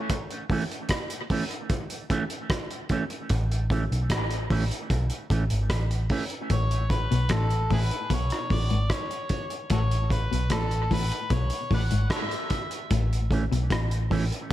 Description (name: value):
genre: dub reggae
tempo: 75 BPM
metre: 4/4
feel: straight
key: A major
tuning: A4 = 440 Hz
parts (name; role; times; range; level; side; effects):
- cloth-damped thuddy drum kit; drums; 0.1-14.5 s; hi-hat, kick drum, rim click; -29 LUFS; equal; none
- electric guitar with an envelope filter; accompaniment; 0.5-6.2, 13.3-14.2 s; E3 to C#4; -32 LUFS; right 4 dB; high-pass filter, tape echo
- vintage muted picked electric bass; bass; 3.3-14.3 s; G#1 to B1; -25 LUFS; equal; none
- overdriven harmonica; melody; 6.5-12.7 s; E4 to F#5; -32 LUFS; left 1 dB; tape echo
- semi-hollow electric guitar; riff; 6.5-14.2 s; G#2 to B2; -33 LUFS; left 6 dB; tape echo
room: light reverb, small room ambience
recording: echo-heavy mix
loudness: -24 LUFS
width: side -14 dB against mid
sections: 0.0-14.5 A section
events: break 0.0-3.3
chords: 0.0 A; 6.5 B7sus2; 12.9 A